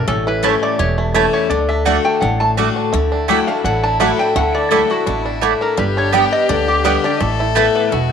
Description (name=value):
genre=bluegrass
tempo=168 BPM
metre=4/4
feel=swing 54% on 8ths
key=D major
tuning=A4 = 440 Hz
part: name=bluegrass banjo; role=melody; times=0.0-8.1 s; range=G3 to G4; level=-22 LUFS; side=right 4 dB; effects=tape echo
part: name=lap resonator guitar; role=melody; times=0.0-8.1 s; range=E4 to B5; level=-20 LUFS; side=equal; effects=tape echo
part: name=picked steel-string acoustic guitar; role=accompaniment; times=0.0-8.1 s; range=E2 to G4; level=-19 LUFS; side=left 8 dB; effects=none
part: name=upright bass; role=bass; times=0.0-8.1 s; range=E1 to D2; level=-21 LUFS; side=right 1 dB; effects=none
part: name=mandolin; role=stabs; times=0.4-7.7 s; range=A3 to A5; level=-19 LUFS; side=right 12 dB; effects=none
part: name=clear fiddle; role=second line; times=2.9-8.1 s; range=E4 to A4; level=-24 LUFS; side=left 8 dB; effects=none
room=moderate spring reverb, RT60 1.4 s, studio ambience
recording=1960s-style stereo with parts hard left and right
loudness=-13 LUFS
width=side -7 dB against mid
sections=0.0-2.9 A section; 2.9-8.1 B section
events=none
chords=0.1 A; 1.5 D; 2.9 Dadd9; 5.8 G; 7.2 Asus2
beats=| 0.08 0.44 0.80 1.15 | 1.51 1.86 2.22 2.58 | 2.94 3.29 3.65 4.00 | 4.36 4.72 5.07 5.43 | 5.79 6.14 6.50 6.85 | 7.21 7.57 7.92